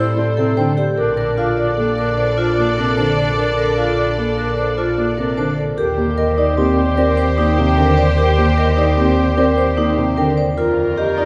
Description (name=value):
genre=classical, minimalist pattern music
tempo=150 BPM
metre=6/4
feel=straight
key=Bb major, Eb major from 5.8 s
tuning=A4 = 440 Hz
part: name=marimba with soft mallets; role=melody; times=0.0-11.3 s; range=G4 to A5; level=-24 LUFS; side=equal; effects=none
part: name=warm oboe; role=second line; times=0.0-11.3 s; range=C4 to Bb4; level=-27 LUFS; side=equal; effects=none
part: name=rich symphonic string section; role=sustained chords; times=0.0-11.3 s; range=F4 to D5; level=-26 LUFS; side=equal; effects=none
part: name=vibraphone with medium hard mallets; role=arpeggios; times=0.0-11.3 s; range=C4 to C5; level=-23 LUFS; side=equal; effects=none
part: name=rich double bass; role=bass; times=0.0-11.3 s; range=Bb1 to A2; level=-22 LUFS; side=equal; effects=none
part: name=dark baby grand piano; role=accompaniment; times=0.2-10.4 s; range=C3 to C4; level=-25 LUFS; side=equal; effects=none
room=wet church reverb, RT60 3.5 s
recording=recorded in a church or concert hall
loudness=-17 LUFS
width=mono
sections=0.0-5.8 A section; 5.8-11.3 B section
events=none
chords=0.0 Am7; 1.0 Bbmaj7; 5.8 Eb6; 10.6 F9sus4